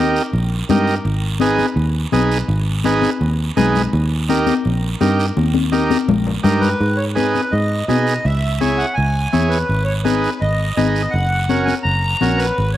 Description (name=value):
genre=latin, cumbia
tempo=167 BPM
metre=4/4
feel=straight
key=G# minor from 6.8 s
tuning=A4 = 439 Hz
part: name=combo organ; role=accompaniment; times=0.0-12.5 s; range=C#4 to C#5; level=-21 LUFS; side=right 3 dB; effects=cassette tape
part: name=fingered electric bass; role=bass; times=0.0-12.8 s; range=F#1 to B2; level=-18 LUFS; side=equal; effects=none
part: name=guiro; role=percussion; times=0.2-12.8 s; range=none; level=-32 LUFS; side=right 6 dB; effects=none
part: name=congas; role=percussion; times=0.7-12.4 s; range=none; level=-21 LUFS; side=left 7 dB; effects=none
part: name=accordion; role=melody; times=6.6-12.8 s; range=B4 to A#5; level=-21 LUFS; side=equal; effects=none
room=moderate spring reverb, RT60 2.5 s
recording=home recording on cassette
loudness=-15 LUFS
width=side -13 dB against mid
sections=0.0-6.8 A section; 6.8-12.8 B section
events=drum fill 5.4-6.8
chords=0.0 D#; 1.1 G#m; 3.9 D#; 6.8 G#m; 8.2 C#m; 9.7 G#m; 11.1 F#